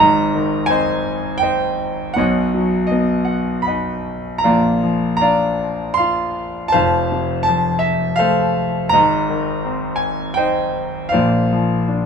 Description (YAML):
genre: classical, lyrical solo piano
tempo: 80 BPM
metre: 3/4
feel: uneven beats, rubato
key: unclear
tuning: A4 = 438 Hz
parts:
  - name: clear concert grand piano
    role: solo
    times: 0.0-12.1 s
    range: F1 to C6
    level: -15 LUFS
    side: equal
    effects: none
room: moderate small room reverb, RT60 0.5 s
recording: small room ambience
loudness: -16 LUFS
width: side -6 dB against mid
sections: 0.0-12.1 A section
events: none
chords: 0.0 Ab; 2.2 Badd9; 4.5 Bbadd9; 6.7 F; 8.9 Ab; 11.1 Bbadd9